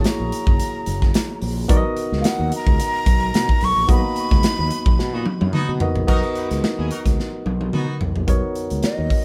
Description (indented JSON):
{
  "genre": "polished 1980s jazz-funk pop",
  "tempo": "109 BPM",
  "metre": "4/4",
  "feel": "swing 54% on 16ths",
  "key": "B major",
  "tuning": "A4 = 442 Hz",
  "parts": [
    { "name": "breathy concert flute", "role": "melody", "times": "0.0-5.5, 8.8-9.2 s", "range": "D#5 to C#6", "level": "-27 LUFS", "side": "equal", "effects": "digital delay" },
    { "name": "barky tine electric piano", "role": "accompaniment", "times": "0.0-9.2 s", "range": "A#3 to D#5", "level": "-28 LUFS", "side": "equal", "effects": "overdrive" },
    { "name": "fretless electric bass", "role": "bass", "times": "0.0-9.1 s", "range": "F#1 to B2", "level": "-26 LUFS", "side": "equal", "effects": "none" },
    { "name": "modern studio drum kit", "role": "drums", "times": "0.0-9.2 s", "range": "crash cymbal, hi-hat, kick drum, snare drum, toms", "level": "-22 LUFS", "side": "equal", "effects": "none" },
    { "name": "clear horn section", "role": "second line", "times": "5.1-8.0 s", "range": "B3 to B4", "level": "-33 LUFS", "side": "equal", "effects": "none" }
  ],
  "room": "light reverb",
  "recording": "band playing live in one room",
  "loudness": "-20 LUFS",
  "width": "mono",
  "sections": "0.0-6.1 A section; 6.1-8.3 B section",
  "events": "band accent 3.9-6.1; drum fill 5.0-6.1, 7.2-8.3",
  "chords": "0.0 F#9; 1.7 Bmaj7; 8.3 Bmaj9"
}